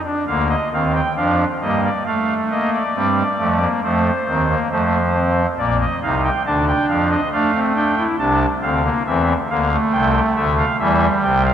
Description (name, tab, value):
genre	classical, baroque-style 3-part fugue for pipe organ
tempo	69 BPM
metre	4/4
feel	straight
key	Bb major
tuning	A4 = 441 Hz
part	pipe organ, soft reed	solo	0.0-11.5 s	Bb1 to A5	-16 LUFS	equal	none
room	wet cathedral reverb, RT60 4.6 s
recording	in a vast, echoing space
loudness	-16 LUFS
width	side -9 dB against mid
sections	0.3-11.5 A section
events	none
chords	0.3 Bb/D; 2.1 F/A; 3.8 F7; 5.6 Bb; 7.3 C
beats	| 0.28 1.17 2.06 2.95 | 3.84 4.71 5.58 6.45 | 7.32 8.19 9.06 9.93 | 10.80